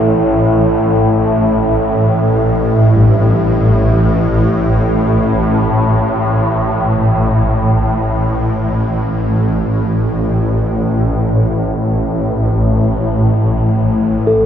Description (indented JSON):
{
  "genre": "dark ambient drone",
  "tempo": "free time",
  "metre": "none",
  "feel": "none",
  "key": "unclear",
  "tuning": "A4 = 441 Hz",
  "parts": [
    { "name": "deep dark ambient pad", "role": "sustained chords", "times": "0.0-14.3 s", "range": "A3 to A5", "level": "-21 LUFS", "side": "right 1 dB", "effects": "chorus, built-in reverb" },
    { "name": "swarming drone", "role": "drone", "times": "0.0-14.5 s", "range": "A1 to A2", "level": "-12 LUFS", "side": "equal", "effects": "built-in reverb" },
    { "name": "bronze singing bowl", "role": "texture", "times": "0.0-14.5 s", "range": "none", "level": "barely audible", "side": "none", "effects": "none" },
    { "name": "dark baby grand piano", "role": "arpeggios", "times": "2.9-14.3 s", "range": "G2 to A3", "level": "-26 LUFS", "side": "right 1 dB", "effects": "none" }
  ],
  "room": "wet cathedral reverb, RT60 6.0 s",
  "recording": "worn, warbling old tape, cassette tape, warbly pitch drift",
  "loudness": "-11 LUFS",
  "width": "side -9 dB against mid",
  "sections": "0.0-14.3 A section",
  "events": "fade-out on ambient pad 0.0-14.3",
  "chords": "0.0 A5",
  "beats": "free time"
}